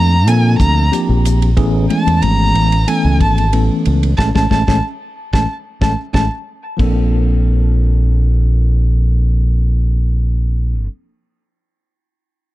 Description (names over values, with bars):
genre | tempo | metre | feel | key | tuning
electric jazz fusion | 92 BPM | 4/4 | straight | Bb major | A4 = 438 Hz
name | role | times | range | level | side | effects
dark violin | melody | 0.0-6.2 s | G#5 to Bb5 | -20 LUFS | right 1 dB | plate reverb, analog delay
bell-like tine electric piano | accompaniment | 0.0-10.9 s | E3 to A4 | -19 LUFS | left 1 dB | fast stereo tremolo
modern bright fingered electric bass | bass | 0.0-10.9 s | G#1 to Bb2 | -13 LUFS | equal | none
damped 70s drum kit | drums | 0.3-7.0 s | crash cymbal, hi-hat, kick drum, ride cymbal, snare drum | -20 LUFS | equal | none
room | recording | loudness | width
little or no reverb | dark, warm production | -12 LUFS | side -16 dB against mid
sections
0.0-6.8 A section; 6.8-9.4 B section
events
violin solo 0.0-6.8; band accent 4.2-6.8; tine electric piano fill 5.5-6.8; drum fill 6.1-6.8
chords
0.0 Bbmaj9; 1.6 Amaj9; 6.8 Bbmaj9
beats
0.27 0.92 | 1.57 2.22 2.88 3.53 | 4.18 4.83 5.49 6.14 | 6.79 7.45 8.10 8.75